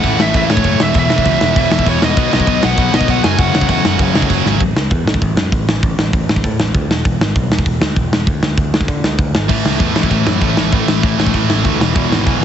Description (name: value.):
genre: punk rock.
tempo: 196 BPM.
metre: 4/4.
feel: straight.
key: unclear.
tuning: A4 = 439 Hz.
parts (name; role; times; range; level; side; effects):
bluesy overdriven lead guitar; melody; 0.0-4.0 s; C#5 to G#5; -18 LUFS; right 1 dB; distortion, digital delay.
distorted electric guitar; riff; 0.0-4.6, 9.5-12.4 s; E2 to B3; -18 LUFS; right 15 dB; overdrive.
sludgy distorted guitar; riff; 0.0-4.6, 9.5-12.4 s; E2 to B3; -18 LUFS; left 12 dB; overdrive.
picked electric bass; bass; 0.0-12.4 s; E1 to D3; -18 LUFS; equal; none.
big rock drum kit; drums; 0.0-12.3 s; crash cymbal, hi-hat, kick drum, snare drum; -15 LUFS; equal; none.
room: little or no reverb.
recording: heavily compressed radio sound, multiband compression, nothing above 8.0 kHz.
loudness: -12 LUFS.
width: side -9 dB against mid.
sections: 0.0-4.6 A section; 4.6-12.4 B section.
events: drum fill 4.5.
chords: 0.0 A; 0.8 E5; 2.2 B; 3.2 F#5; 4.6 N.C.; 9.5 A5; 11.8 E.